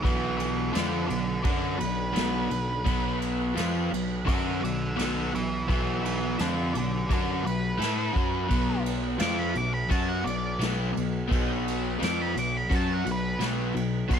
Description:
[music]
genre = blues rock power trio and southern rock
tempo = 85 BPM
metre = 4/4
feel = straight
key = B minor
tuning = A4 = 435 Hz
[part]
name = octave-fuzz lead guitar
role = melody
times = 0.0-14.2 s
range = A4 to D6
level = -32 LUFS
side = right 1 dB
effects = distortion
[part]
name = overdriven tonewheel organ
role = sustained chords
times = 0.0-14.2 s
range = D3 to G5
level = -41 LUFS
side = right 5 dB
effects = slow rotary speaker, chorus vibrato
[part]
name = crunchy overdriven guitar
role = riff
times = 0.0-14.2 s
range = B2 to A4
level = -29 LUFS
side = left 1 dB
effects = none
[part]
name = fuzz picked electric bass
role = bass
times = 0.0-14.2 s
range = B1 to A2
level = -32 LUFS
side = equal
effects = overdrive
[part]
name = vintage brush drum kit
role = drums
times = 0.0-14.2 s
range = kick drum, ride cymbal, snare drum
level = -31 LUFS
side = equal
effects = none
[sound]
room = small room ambience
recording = none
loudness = -25 LUFS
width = side -8 dB against mid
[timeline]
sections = 0.0-14.2 A section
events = lead electric guitar solo 0.0-14.2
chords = 0.0 Bm

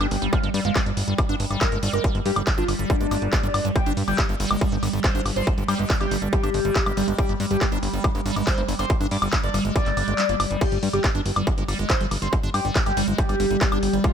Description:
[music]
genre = psychedelic trance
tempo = 140 BPM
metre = 4/4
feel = straight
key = unclear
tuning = A4 = 440 Hz
[part]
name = overdriven synth lead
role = melody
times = 0.0-14.1 s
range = D4 to D5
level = -28 LUFS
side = left 1 dB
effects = phaser, sidechain pumping, digital delay
[part]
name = overtone-sweeping drone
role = sustained chords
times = 0.0-14.1 s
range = G3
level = -30 LUFS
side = right 2 dB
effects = chorus, built-in reverb, sidechain pumping
[part]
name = liquid acid bass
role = riff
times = 0.0-14.0 s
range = G3 to D4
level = -30 LUFS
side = equal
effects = phaser, auto-pan, sidechain pumping, digital delay
[part]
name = fat analog bass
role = bass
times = 0.0-14.0 s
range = G1 to G2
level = -26 LUFS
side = equal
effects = none
[part]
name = techno drum kit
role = drums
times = 0.0-14.1 s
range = crash cymbal, handclaps, hi-hat, woodblock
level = -28 LUFS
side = left 1 dB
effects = none
[part]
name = electronic kick drum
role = drums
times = 0.3-14.1 s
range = none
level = -23 LUFS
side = equal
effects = distortion
[sound]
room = digital ambience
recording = none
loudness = -20 LUFS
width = side -8 dB against mid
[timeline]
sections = 0.0-14.1 A section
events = kick drops out 10.2-10.6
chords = 0.0 G5

